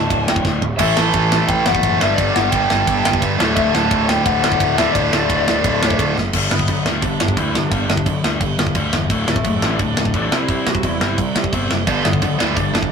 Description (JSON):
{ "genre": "punk rock", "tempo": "173 BPM", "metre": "4/4", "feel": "straight", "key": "D major", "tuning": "A4 = 440 Hz", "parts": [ { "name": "lead guitar through a small cranked amp", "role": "melody", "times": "0.0-12.9 s", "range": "A3 to A5", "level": "-22 LUFS", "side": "left 2 dB", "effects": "overdrive" }, { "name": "biting overdriven guitar", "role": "riff", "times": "0.0-12.9 s", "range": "D2 to C4", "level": "-21 LUFS", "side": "left 3 dB", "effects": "none" }, { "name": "fuzz picked electric bass", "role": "bass", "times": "0.0-12.9 s", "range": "D1 to G2", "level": "-24 LUFS", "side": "right 1 dB", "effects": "overdrive" }, { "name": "tight metal drum kit", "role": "drums", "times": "0.1-12.9 s", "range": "crash cymbal, kick drum, ride cymbal, snare drum, toms", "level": "-19 LUFS", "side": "right 1 dB", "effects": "none" }, { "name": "tight distorted guitar", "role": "riff", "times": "0.8-6.2, 11.9-12.9 s", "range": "D2 to A3", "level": "-20 LUFS", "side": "right 5 dB", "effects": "distortion" } ], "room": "light reverb", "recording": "rough rehearsal-room recording", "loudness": "-15 LUFS", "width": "side -6 dB against mid", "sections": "0.0-6.3 A section; 6.3-12.9 B section", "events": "drum fill 0.4-0.8, 6.2", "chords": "0.0 D5; 0.8 A5; 2.0 G5; 3.4 D5; 6.3 G5; 9.1 D; 10.3 C; 11.9 G" }